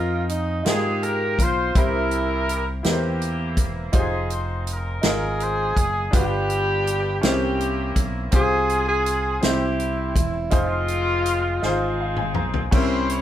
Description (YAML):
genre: slow gospel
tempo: 55 BPM (dotted quarters)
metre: 6/8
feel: straight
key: F minor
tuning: A4 = 441 Hz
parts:
  - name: breathy tenor saxophone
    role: melody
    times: 0.0-12.3 s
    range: Eb4 to Ab4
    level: -25 LUFS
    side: right 1 dB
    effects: none
  - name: clear horn section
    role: melody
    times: 0.0-13.2 s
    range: Ab3 to Db5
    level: -28 LUFS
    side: left 2 dB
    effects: none
  - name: clear baby grand piano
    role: accompaniment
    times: 0.0-13.2 s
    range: G2 to Bb5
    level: -27 LUFS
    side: left 1 dB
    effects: none
  - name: fingered electric bass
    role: bass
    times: 0.0-13.2 s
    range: E1 to Ab2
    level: -27 LUFS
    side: equal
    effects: none
  - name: natural country drum kit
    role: drums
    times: 0.3-13.2 s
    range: crash cymbal, hi-hat, kick drum, snare drum, toms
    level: -22 LUFS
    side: equal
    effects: none
room: light reverb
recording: band playing live in one room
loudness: -20 LUFS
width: side -11 dB against mid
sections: 0.0-12.7 A section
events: drum fill 11.6-12.7; grand piano fill 11.6-12.7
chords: 0.0 Fm7; 1.8 C7; 3.9 Fm7; 6.1 G7; 7.2 C7b9; 8.3 Fm/C; 9.4 C; 10.5 Fm7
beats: 0.66 | 1.75 2.85 | 3.94 5.04 | 6.14 7.24 | 8.34 9.43 | 10.53 11.63 | 12.73